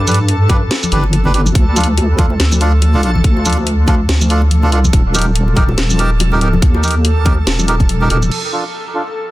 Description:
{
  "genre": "deep dubstep",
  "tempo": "142 BPM",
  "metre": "4/4",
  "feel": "swing 58% on 16ths, half-time",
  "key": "D phrygian",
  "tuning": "A4 = 440 Hz",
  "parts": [
    { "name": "deep soft wobble bass", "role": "bass", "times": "0.0-8.3 s", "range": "Eb1 to G2", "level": "-13 LUFS", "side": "equal", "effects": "chorus, tube saturation" },
    { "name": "backwards swelling texture", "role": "texture", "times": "0.0-9.3 s", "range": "A4", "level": "-25 LUFS", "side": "right 1 dB", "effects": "built-in reverb" },
    { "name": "melodica", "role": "stabs", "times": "0.1-9.0 s", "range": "D4 to B4", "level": "-20 LUFS", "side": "right 2 dB", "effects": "low-pass filter, dub echo" },
    { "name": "garage drum kit", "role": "drums", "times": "0.1-8.4 s", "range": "crash cymbal, hi-hat, shaker, snare drum", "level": "-19 LUFS", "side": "equal", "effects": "none" },
    { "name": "congas and bongos", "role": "percussion", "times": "0.1-8.3 s", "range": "none", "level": "-22 LUFS", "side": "left 3 dB", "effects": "dub echo" },
    { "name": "electronic kick drum", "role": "drums", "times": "0.5-7.9 s", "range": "none", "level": "-13 LUFS", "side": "equal", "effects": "none" }
  ],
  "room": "little or no reverb",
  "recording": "dense, heavily limited modern master",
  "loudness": "-11 LUFS",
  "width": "side -17 dB against mid",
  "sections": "0.0-8.3 A section",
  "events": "none",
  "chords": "0.0 G; 1.6 Dm; 4.9 Eb; 8.3 Dm",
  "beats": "0.29 0.71 1.13 | 1.55 1.98 2.40 2.82 | 3.24 3.67 4.09 4.51 | 4.93 5.36 5.78 6.20 | 6.62 7.05 7.47 7.89 | 8.31 8.74 9.16"
}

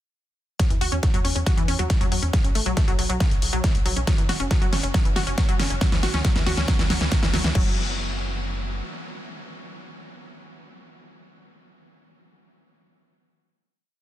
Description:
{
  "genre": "uplifting trance",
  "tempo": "138 BPM",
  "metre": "4/4",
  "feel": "straight",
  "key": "unclear",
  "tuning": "A4 = 440 Hz",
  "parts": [
    { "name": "wide unison pluck", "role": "arpeggios", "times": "0.6-7.8 s", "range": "C#3 to F#4", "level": "-29 LUFS", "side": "left 1 dB", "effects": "sidechain pumping, dub echo" },
    { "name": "big-room dance drum kit", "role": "drums", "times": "0.6-7.6 s", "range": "crash cymbal, hi-hat, snare drum", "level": "-27 LUFS", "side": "equal", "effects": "small room reverb" },
    { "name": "electronic kick drum", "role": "drums", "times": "0.6-7.6 s", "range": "none", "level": "-21 LUFS", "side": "equal", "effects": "small room reverb" },
    { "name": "tight sequencer bass", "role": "bass", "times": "0.7-8.8 s", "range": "E1 to E2", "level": "-28 LUFS", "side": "equal", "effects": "sidechain pumping" }
  ],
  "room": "digital ambience",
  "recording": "dense, heavily limited modern master",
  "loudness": "-20 LUFS",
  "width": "side -13 dB against mid",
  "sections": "0.6-7.6 build; 7.6-11.0 final chord",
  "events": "build-up 0.6-7.6; drum fill 0.6-7.6",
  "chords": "0.6 Esus2; 2.3 B5; 4.1 F#5; 5.8 D; 7.6 N.C.",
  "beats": "| 0.60 1.03 1.47 1.90 | 2.33 2.77 3.20 3.64 | 4.07 4.51 4.94 5.38 | 5.81 6.25 6.68 7.12 | 7.55 7.99 8.42"
}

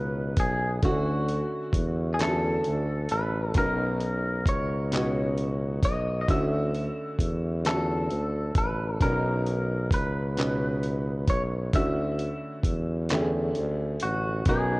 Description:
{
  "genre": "slow six-eight R&B",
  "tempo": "44 BPM (dotted quarters)",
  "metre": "6/8",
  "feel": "straight",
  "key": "unclear",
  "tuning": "A4 = 440 Hz",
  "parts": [
    { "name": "clean electric guitar", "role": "melody", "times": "0.0-14.8 s", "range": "F#4 to E5", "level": "-31 LUFS", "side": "left 1 dB", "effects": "spring reverb, slapback echo" },
    { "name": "clear grand piano", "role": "accompaniment", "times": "0.0-14.8 s", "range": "B2 to B4", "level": "-31 LUFS", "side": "equal", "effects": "none" },
    { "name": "clear tuba", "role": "bass", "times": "0.0-14.8 s", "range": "A1 to E2", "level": "-28 LUFS", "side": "equal", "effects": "none" },
    { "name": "dusty soul sampler-style drum kit", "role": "drums", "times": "0.4-14.7 s", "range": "handclaps, hi-hat, kick drum", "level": "-27 LUFS", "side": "equal", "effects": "none" }
  ],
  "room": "studio reverb",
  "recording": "worn, warbling old tape, cassette tape, warbly pitch drift",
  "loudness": "-24 LUFS",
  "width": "side -22 dB against mid",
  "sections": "0.0-14.8 A section",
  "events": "none",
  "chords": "0.0 Bmaj9; 0.8 Dmaj9; 3.6 Bmaj9; 6.3 Dmaj9; 9.0 Bmaj9; 11.7 Dmaj9",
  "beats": "| 0.82 2.19 | 3.55 4.92 | 6.28 7.64 | 9.01 10.37 | 11.73 13.10 | 14.46"
}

